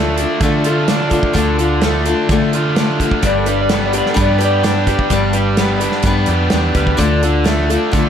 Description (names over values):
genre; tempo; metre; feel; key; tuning
folk rock and heartland rock; 128 BPM; 4/4; straight; D dorian; A4 = 440 Hz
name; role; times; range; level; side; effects
picked steel-string acoustic guitar; accompaniment; 0.0-8.1 s; D3 to B4; -18 LUFS; left 4 dB; none
crunchy overdriven guitar; riff; 0.0-8.1 s; G2 to G4; -18 LUFS; right 2 dB; none
hollow-body short-scale fingered electric bass; bass; 0.0-8.1 s; G1 to D3; -19 LUFS; right 1 dB; none
natural country drum kit; drums; 0.2-8.0 s; hi-hat, kick drum, snare drum; -19 LUFS; right 2 dB; none
clean lap steel guitar; second line; 3.3-5.8 s; A4 to D5; -20 LUFS; left 1 dB; none
room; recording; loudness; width
light reverb, small room reverb; none; -12 LUFS; side -8 dB against mid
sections
0.0-8.1 A section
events
none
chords
0.0 Dm; 3.2 G; 7.0 Dm